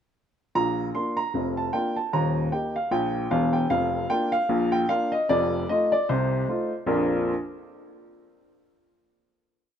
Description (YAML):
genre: ragtime piano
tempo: 76 BPM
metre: 2/4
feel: swing 57% on 16ths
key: Bb major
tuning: A4 = 440 Hz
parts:
  - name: warm upright piano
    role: solo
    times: 0.6-7.3 s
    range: Eb1 to C6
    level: -22 LUFS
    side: equal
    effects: none
room: light reverb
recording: minimal, uncompressed stereo recording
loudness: -22 LUFS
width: side -8 dB against mid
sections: 0.6-6.9 A section; 6.9-8.5 final chord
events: none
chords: 0.6 Bb; 2.1 Eb; 3.7 Bb/F; 5.3 F7; 6.9 Bb